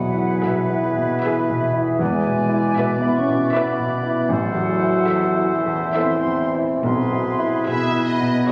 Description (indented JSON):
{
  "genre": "classical, romantic movement for piano and orchestra",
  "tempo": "66-80 BPM",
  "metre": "3/4",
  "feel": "rubato",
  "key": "E major",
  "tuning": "A4 = 440 Hz",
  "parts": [
    { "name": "warm grand piano", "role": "melody", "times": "0.0-8.5 s", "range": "A1 to E4", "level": "-24 LUFS", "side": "equal", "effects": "none" },
    { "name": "bright large flute ensemble", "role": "second line", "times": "0.0-8.5 s", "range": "E5 to C#6", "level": "-32 LUFS", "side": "equal", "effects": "none" },
    { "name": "clear clarinet", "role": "second line", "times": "0.0-8.5 s", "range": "F#4 to B4", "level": "-32 LUFS", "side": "equal", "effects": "none" },
    { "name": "warm oboe", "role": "second line", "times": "0.0-8.5 s", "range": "B4 to D5", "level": "-32 LUFS", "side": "equal", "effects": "none" },
    { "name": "mellow bassoon", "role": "accompaniment", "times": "0.0-8.5 s", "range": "E3", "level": "-29 LUFS", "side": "equal", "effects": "none" },
    { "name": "mellow French horn section", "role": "sustained chords", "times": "0.0-8.5 s", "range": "E3 to C#4", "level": "-26 LUFS", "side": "equal", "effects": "none" },
    { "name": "rich symphonic cello section", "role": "bass", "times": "0.0-8.5 s", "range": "E2 to B2", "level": "-34 LUFS", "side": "equal", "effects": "none" },
    { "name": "rich symphonic double bass section", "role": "bass", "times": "0.0-8.5 s", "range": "E1 to B1", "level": "-37 LUFS", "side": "equal", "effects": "none" },
    { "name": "rich chamber viola section", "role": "accompaniment", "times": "0.4-8.5 s", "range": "F#4 to B4", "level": "-34 LUFS", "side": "equal", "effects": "none" },
    { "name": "rich symphonic violin section", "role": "melody", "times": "0.5-8.5 s", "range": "E5", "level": "-33 LUFS", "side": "equal", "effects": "none" },
    { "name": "rich studio violin section", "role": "second line", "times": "0.5-8.5 s", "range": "B4 to E5", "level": "-34 LUFS", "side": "equal", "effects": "none" }
  ],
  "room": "wet concert hall reverb, RT60 1.9 s",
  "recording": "recorded on a phone in the room, club reverb",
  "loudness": "-20 LUFS",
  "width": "mono",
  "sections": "0.0-8.5 A section",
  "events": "none",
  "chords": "0.0 E; 2.0 E7; 4.3 Am; 6.8 E/B"
}